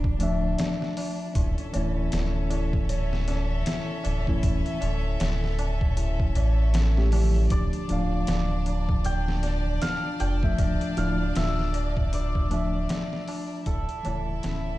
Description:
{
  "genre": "trip hop",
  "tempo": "78 BPM",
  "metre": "4/4",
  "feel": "swing 59% on 16ths",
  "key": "D harmonic minor",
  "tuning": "A4 = 441 Hz",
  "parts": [
    { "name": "rich studio violin section", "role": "sustained chords", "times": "0.0-14.8 s", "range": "C#4 to E5", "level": "-37 LUFS", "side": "left 1 dB", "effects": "none" },
    { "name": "dark detuned synth bell", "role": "arpeggios", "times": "0.0-14.8 s", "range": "C#4 to D5", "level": "-38 LUFS", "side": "left 4 dB", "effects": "chorus, phaser, vintage 12-bit sampler grit, tape echo" },
    { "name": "soft dub sub bass", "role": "bass", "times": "0.0-14.8 s", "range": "D1 to A1", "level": "-26 LUFS", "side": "equal", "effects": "none" },
    { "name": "trip hop sampler-style drum kit", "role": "drums", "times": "0.0-14.7 s", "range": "hi-hat, kick drum, snare drum", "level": "-29 LUFS", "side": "equal", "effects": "vintage 12-bit sampler grit" },
    { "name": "tabla", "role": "percussion", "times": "0.1-14.8 s", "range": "none", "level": "-40 LUFS", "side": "right 3 dB", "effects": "none" },
    { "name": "mellow reed electric piano", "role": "accompaniment", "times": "0.2-14.8 s", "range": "C#3 to F5", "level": "-31 LUFS", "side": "left 1 dB", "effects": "harmonic tremolo, tape echo" },
    { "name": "santur", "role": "melody", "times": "7.5-14.8 s", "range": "A4 to G5", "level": "-35 LUFS", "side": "equal", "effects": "tape echo" }
  ],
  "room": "small room reverb",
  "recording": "played on a big sound system in a bare room, large studio reverb",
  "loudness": "-24 LUFS",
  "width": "side -17 dB against mid",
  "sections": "0.0-14.8 A section",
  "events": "fade-out 11.6-14.8",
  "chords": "0.0 Dmadd9; 1.4 A/D; 7.5 Dmadd9; 13.7 A/D"
}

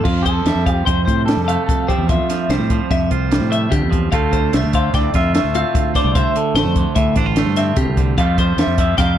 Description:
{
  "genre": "math rock and midwest emo",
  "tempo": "148 BPM",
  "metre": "5/4",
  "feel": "straight",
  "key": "unclear",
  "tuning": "A4 = 441 Hz",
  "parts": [
    { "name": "electric guitar through a small old amp", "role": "melody", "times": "0.0-9.2 s", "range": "F4 to F5", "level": "-23 LUFS", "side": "equal", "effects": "plate reverb, tape echo" },
    { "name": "twangy electric guitar", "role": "accompaniment", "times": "0.0-9.2 s", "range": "D2 to F4", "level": "-22 LUFS", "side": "right 10 dB", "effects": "plate reverb" },
    { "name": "twelve-string electric guitar", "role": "arpeggios", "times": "0.0-9.2 s", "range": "F4 to G5", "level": "-23 LUFS", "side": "left 5 dB", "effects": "plate reverb" },
    { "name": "growling fingered electric bass", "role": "bass", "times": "0.0-9.2 s", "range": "A1 to D3", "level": "-19 LUFS", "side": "equal", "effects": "overdrive" },
    { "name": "compact cocktail drum kit", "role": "drums", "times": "0.1-9.1 s", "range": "crash cymbal, hi-hat, kick drum, snare drum", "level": "-19 LUFS", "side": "equal", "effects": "none" }
  ],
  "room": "light reverb",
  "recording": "dark, warm production",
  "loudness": "-14 LUFS",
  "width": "side -10 dB against mid",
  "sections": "0.1-9.2 A section",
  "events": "none",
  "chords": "0.1 Fmaj9; 4.1 Dm9; 8.2 Fmaj9"
}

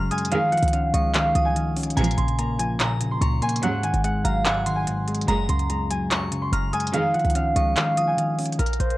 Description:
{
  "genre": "hip hop, trap",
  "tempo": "145 BPM",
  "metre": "4/4",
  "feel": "half-time",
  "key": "unclear",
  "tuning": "A4 = 439 Hz",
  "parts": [
    { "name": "concert harp", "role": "melody", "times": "0.0-9.0 s", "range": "Bb4 to C6", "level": "-25 LUFS", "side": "right 1 dB", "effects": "none" },
    { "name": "glassy synth bell", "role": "second line", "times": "0.0-8.2 s", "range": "Ab5 to F6", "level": "-33 LUFS", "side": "equal", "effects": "chorus, digital delay" },
    { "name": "mellow electric guitar", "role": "accompaniment", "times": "0.0-8.6 s", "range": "Gb2 to Db4", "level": "-26 LUFS", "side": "left 1 dB", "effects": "none" },
    { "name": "short 808-style bass", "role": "bass", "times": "0.0-9.0 s", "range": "Gb1 to Db2", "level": "-25 LUFS", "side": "equal", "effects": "none" },
    { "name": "organic electronic drum kit", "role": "drums", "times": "0.1-9.0 s", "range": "handclaps, hi-hat", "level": "-28 LUFS", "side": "equal", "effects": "none" },
    { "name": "rich symphonic string section", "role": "stabs", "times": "0.3-7.1 s", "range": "Db2 to Ab3", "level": "-26 LUFS", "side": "right 3 dB", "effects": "none" }
  ],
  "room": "little or no reverb",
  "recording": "worn, warbling old tape, cassette tape, warbly pitch drift",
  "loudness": "-20 LUFS",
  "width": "side -17 dB against mid",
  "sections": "0.0-8.6 A section",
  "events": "kick muted 7.8-8.6",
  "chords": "0.3 Dbadd9; 2.0 Bbmadd9; 3.6 Ab7(no3); 5.3 Gbadd9; 6.9 Dbadd9"
}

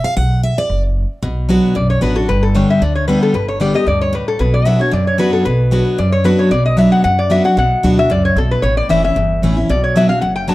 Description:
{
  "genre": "bluegrass",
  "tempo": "227 BPM",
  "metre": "4/4",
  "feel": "straight",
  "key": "B minor",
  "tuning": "A4 = 440 Hz",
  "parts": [
    { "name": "picked steel-string acoustic guitar", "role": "accompaniment", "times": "0.0-10.5 s", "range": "E2 to F#5", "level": "-15 LUFS", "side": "equal", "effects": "none" },
    { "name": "upright bass", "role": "bass", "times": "0.2-10.5 s", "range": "F#1 to F#2", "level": "-18 LUFS", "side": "equal", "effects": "none" },
    { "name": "lap resonator guitar", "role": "melody", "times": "1.8-10.5 s", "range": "A4 to A5", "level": "-17 LUFS", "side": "left 2 dB", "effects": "plate reverb" }
  ],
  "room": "moderate studio reverb, RT60 0.5 s",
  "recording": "dark, warm production",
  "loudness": "-12 LUFS",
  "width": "side -17 dB against mid",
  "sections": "0.0-1.2 A section; 1.2-10.5 A section",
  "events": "steel-string acoustic guitar solo 0.0-1.2; resonator guitar played with a steel bar solo 1.2-10.5",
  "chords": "0.2 Bm; 2.3 G; 4.4 Bm; 8.6 A; 9.7 Bm"
}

